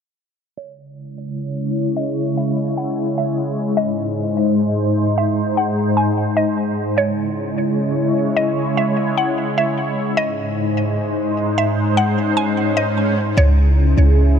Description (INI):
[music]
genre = hip hop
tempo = 150 BPM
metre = 4/4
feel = half-time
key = C# harmonic minor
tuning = A4 = 444 Hz
[part]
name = mallet-like synth pluck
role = melody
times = 0.6-14.1 s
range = C#5 to G#5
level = -23 LUFS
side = equal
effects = chorus, low-pass filter, digital delay
[part]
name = sweeping resonant pad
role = sustained chords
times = 0.6-14.4 s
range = G#2 to C#5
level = -18 LUFS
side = equal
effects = chorus, tremolo, low-pass filter
[part]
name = swell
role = sound effects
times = 12.1-13.4 s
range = none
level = -28 LUFS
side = right 1 dB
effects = none
[part]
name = clean 808-style bass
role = bass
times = 13.4-14.4 s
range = C#2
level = -12 LUFS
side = equal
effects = none
[sound]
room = moderate huge ambient reverb, RT60 8.2 s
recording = none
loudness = -16 LUFS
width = side -7 dB against mid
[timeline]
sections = 0.6-13.4 A section; 13.4-14.4 B section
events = filter sweep 0.6-13.4; swell 12.1-13.4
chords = 0.6 C#m; 3.8 G#; 7.0 C#m; 10.2 G#; 13.4 C#m